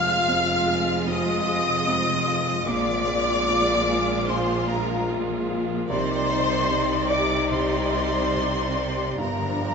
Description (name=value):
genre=cinematic, emotional film score for orchestra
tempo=74 BPM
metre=4/4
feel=rubato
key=C minor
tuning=A4 = 441 Hz
part: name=dark studio violin section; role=melody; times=0.0-9.7 s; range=Bb5 to F6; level=-29 LUFS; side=left 2 dB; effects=none
part: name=mellow hollow concert flute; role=second line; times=0.0-9.7 s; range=Bb5 to F6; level=-29 LUFS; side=left 1 dB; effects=none
part: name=rich studio violin section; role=second line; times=0.0-9.7 s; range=Bb4 to F5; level=-28 LUFS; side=left 2 dB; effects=none
part: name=dark baby grand piano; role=accompaniment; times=0.0-9.7 s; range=F1 to F5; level=-31 LUFS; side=right 2 dB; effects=none
part: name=warm studio viola section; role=accompaniment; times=0.0-9.7 s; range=F3 to D5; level=-30 LUFS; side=right 2 dB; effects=none
part: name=mellow French horn section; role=sustained chords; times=0.0-9.7 s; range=G3 to F4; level=-29 LUFS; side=left 4 dB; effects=none
part: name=concert harp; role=arpeggios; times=0.0-9.7 s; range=F2 to F6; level=-35 LUFS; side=left 6 dB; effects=none
part: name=rich studio cello section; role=bass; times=0.0-9.7 s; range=F2 to C3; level=-31 LUFS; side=right 4 dB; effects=none
part: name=warm studio double bass section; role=bass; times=0.0-9.7 s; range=F1 to C2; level=-33 LUFS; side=right 4 dB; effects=none
part: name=timpani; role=percussion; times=9.2-9.7 s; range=G2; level=-35 LUFS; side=right 2 dB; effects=none
room=moderate scoring stage reverb, RT60 2.1 s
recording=nothing above 7.8 kHz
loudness=-21 LUFS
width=side -5 dB against mid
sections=0.0-9.7 A section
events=timpani fill 9.2-9.7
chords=0.0 Fmadd9; 2.7 Bb7; 5.9 Cmadd9; 9.2 Gm7